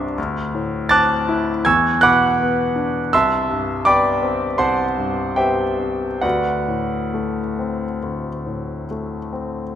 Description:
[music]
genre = classical, impressionist solo piano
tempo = 66-83 BPM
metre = 4/4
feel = rubato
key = unclear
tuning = A4 = 438 Hz
[part]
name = clear concert grand piano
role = solo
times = 0.0-9.8 s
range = C2 to A6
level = -17 LUFS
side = equal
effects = none
[sound]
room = moderate concert hall reverb, RT60 2.4 s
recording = none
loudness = -17 LUFS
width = side -10 dB against mid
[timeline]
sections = 0.0-9.8 A section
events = none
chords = 0.2 D9; 1.7 E9; 3.1 Cmaj7; 6.2 D7

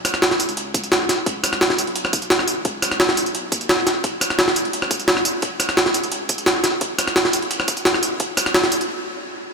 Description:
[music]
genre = liquid drum and bass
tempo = 173 BPM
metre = 4/4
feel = straight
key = unclear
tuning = A4 = 439 Hz
[part]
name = warm sub bass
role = bass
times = 0.0-8.9 s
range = Eb1 to Eb2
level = -41 LUFS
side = equal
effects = none
[part]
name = jungle sampler-style drum kit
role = drums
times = 0.0-8.9 s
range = hi-hat, rim click, snare drum, tambourine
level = -17 LUFS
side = equal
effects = none
[part]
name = electronic kick drum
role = drums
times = 0.7-8.4 s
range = none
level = -26 LUFS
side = left 1 dB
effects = high-pass filter on kick
[sound]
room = moderate huge ambient reverb, RT60 6.5 s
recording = none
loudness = -17 LUFS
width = side -4 dB against mid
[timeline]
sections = 0.0-9.5 A section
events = build-up 0.0-9.5; stop 8.9-9.5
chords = none

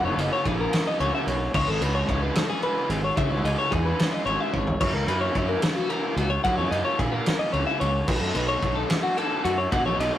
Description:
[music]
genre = math rock and midwest emo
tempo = 73 BPM (dotted quarters)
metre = 6/8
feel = straight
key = unclear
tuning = A4 = 439 Hz
[part]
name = twelve-string electric guitar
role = arpeggios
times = 0.0-10.2 s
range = F#4 to F#5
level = -26 LUFS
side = left 3 dB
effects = none
[part]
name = raw garage guitar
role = riff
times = 0.0-10.2 s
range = B2 to D#4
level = -32 LUFS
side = right 1 dB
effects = overdrive
[part]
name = fuzz fingered electric bass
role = bass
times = 0.0-10.1 s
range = F#1 to F#3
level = -27 LUFS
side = right 1 dB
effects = overdrive
[part]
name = loose indie drum kit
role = drums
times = 0.2-10.1 s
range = crash cymbal, kick drum, ride cymbal, snare drum, toms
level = -27 LUFS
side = right 1 dB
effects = none
[sound]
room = light reverb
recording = rough rehearsal-room recording, warm saturation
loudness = -22 LUFS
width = side -12 dB against mid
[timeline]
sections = 0.0-10.2 A section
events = drum fill 4.5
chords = 0.0 F#7; 1.5 C#m7; 4.8 F#7; 8.1 B7(no3)

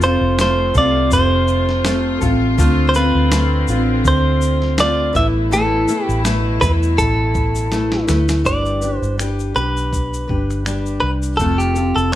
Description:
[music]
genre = acoustic pop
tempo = 82 BPM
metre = 4/4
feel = swing 55% on 16ths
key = unclear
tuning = A4 = 440 Hz
[part]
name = direct-recorded clean electric guitar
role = melody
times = 0.0-12.2 s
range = G4 to E5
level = -19 LUFS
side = right 1 dB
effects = plate reverb
[part]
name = fingerpicked steel-string acoustic guitar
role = accompaniment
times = 0.0-12.2 s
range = A2 to C5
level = -20 LUFS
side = left 1 dB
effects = none
[part]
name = warm studio string section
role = sustained chords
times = 0.0-8.4 s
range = B2 to F4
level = -27 LUFS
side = left 3 dB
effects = none
[part]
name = vintage muted fingered electric bass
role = bass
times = 0.0-12.2 s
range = F1 to E2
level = -19 LUFS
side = equal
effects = none
[part]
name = dusty soul sampler-style drum kit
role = drums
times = 0.0-12.2 s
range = finger snaps, kick drum, shaker, snare drum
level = -22 LUFS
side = equal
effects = none
[sound]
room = moderate studio reverb, RT60 0.6 s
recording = none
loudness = -14 LUFS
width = side -13 dB against mid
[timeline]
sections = 0.0-8.5 A section; 8.5-12.2 B section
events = drum fill 7.7-8.5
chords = 0.0 F; 2.6 Dm7; 5.2 Asus2; 8.5 G; 11.4 F

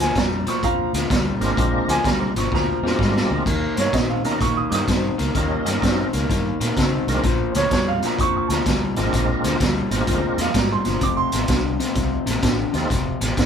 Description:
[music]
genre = electric blues shuffle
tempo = 127 BPM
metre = 4/4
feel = swing 65% on 8ths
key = Bb mixolydian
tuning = A4 = 439 Hz
[part]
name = warm upright piano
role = second line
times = 0.0-12.5 s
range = C5 to Eb6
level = -25 LUFS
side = right 5 dB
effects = none
[part]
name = electric guitar through a small old amp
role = riff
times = 0.0-13.5 s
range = F2 to C4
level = -24 LUFS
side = left 4 dB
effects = none
[part]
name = vintage muted fingered electric bass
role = bass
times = 0.0-13.5 s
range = F1 to Db3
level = -26 LUFS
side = equal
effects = none
[part]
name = raw garage drum kit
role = drums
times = 0.0-13.5 s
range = hi-hat, kick drum, snare drum, splash cymbal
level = -23 LUFS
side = right 1 dB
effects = none
[part]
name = tonewheel organ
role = accompaniment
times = 1.4-12.9 s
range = G3 to Bb4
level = -25 LUFS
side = right 2 dB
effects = slow rotary speaker, overdrive, chorus vibrato
[sound]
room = moderate small room ambience, RT60 0.5 s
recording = band playing live in one room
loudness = -18 LUFS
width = side -7 dB against mid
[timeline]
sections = 0.0-13.5 A section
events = upright piano solo 0.0-13.5; drum fill 2.5-3.5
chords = 0.0 Bb7; 3.5 Eb7; 7.2 Bb7; 11.0 F7

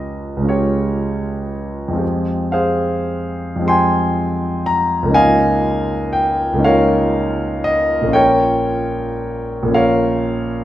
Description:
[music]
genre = classical, impressionist solo piano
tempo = 33-42 BPM (dotted quarters)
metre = 6/8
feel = rubato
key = unclear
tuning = A4 = 440 Hz
[part]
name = clear concert grand piano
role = solo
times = 0.0-10.6 s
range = Bb1 to C6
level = -15 LUFS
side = equal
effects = none
[sound]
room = moderate recital hall reverb, RT60 1.5 s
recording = none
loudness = -15 LUFS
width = side -13 dB against mid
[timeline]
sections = 0.0-10.6 A section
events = none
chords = 0.0 Db; 2.0 Fmadd9; 5.2 Db69; 8.2 Bbm6

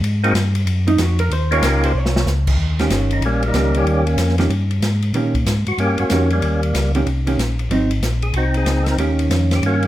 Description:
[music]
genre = soul jazz organ trio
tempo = 188 BPM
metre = 4/4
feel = swing 63% on 8ths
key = Eb mixolydian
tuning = A4 = 439 Hz
[part]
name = mellow tonewheel organ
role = bass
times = 0.0-9.9 s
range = G1 to Bb2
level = -18 LUFS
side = equal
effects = slow rotary speaker
[part]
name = open jazz drum kit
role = drums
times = 0.0-9.9 s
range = crash cymbal, hi-hat, kick drum, ride cymbal, snare drum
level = -24 LUFS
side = left 1 dB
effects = none
[part]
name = percussive tonewheel organ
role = melody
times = 0.2-9.9 s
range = G3 to Bb4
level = -20 LUFS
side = equal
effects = slow rotary speaker, chorus vibrato
[part]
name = vintage hollow-body jazz guitar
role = accompaniment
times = 0.9-9.9 s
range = Eb3 to Db5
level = -21 LUFS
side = right 2 dB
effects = none
[sound]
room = moderate large studio reverb, RT60 1.2 s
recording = none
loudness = -15 LUFS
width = side -14 dB against mid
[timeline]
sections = 0.0-2.6 A section; 2.6-9.9 B section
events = hollow-body jazz guitar solo 0.0-2.6; drum fill 1.9-2.3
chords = 0.0 Ab7(no3); 1.3 Eb7; 7.7 Ab7; 9.0 Eb7

